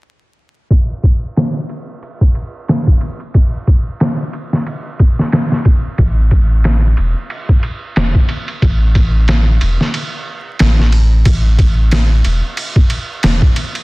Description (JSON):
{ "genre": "trip hop", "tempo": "91 BPM", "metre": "4/4", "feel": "swing 56% on 16ths", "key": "unclear", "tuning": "A4 = 439 Hz", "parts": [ { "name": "trip hop sampler-style drum kit", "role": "drums", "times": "0.7-13.8 s", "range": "kick drum, ride cymbal, snare drum", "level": "-13 LUFS", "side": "equal", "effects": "low-pass filter on kick, studio reverb, low-pass filter on cymbals, low-pass filter on snare" }, { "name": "soft dub sub bass", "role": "bass", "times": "6.0-13.4 s", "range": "E1 to A1", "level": "-12 LUFS", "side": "equal", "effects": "none" } ], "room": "digital ambience", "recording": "dense, heavily limited modern master, vinyl crackle, low-pass filter", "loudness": "-11 LUFS", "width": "side -23 dB against mid", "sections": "0.7-11.3 A section; 11.3-13.8 B section", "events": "filter sweep 0.7-11.3; kick drops out 9.9-11.3", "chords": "none" }